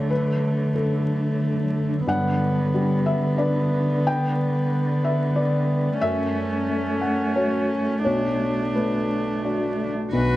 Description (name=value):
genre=neoclassical piano and strings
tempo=85-94 BPM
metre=3/4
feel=rubato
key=B minor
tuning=A4 = 440 Hz
part: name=dark cello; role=second line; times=0.0-10.4 s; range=D3 to F#4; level=-24 LUFS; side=right 1 dB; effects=none
part: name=felt-muted upright piano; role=accompaniment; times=0.0-10.4 s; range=B1 to G5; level=-25 LUFS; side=left 2 dB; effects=none
part: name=warm viola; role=accompaniment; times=0.0-9.9 s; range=A3 to D4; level=-27 LUFS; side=equal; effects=plate reverb
part: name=granular cloud pad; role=sustained chords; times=0.0-10.4 s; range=F#3 to D5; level=-32 LUFS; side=left 1 dB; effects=built-in reverb
part: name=dark double bass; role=bass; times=10.1-10.4 s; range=B1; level=-24 LUFS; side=equal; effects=none
part: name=rich violin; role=melody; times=10.2-10.4 s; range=B4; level=-25 LUFS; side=left 3 dB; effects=none
room=wet studio reverb, RT60 0.5 s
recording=dark, warm production, vinyl crackle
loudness=-20 LUFS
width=side -16 dB against mid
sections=0.0-10.1 A section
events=none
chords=0.0 D; 2.1 Gmaj7; 6.0 F#m; 8.1 Bm7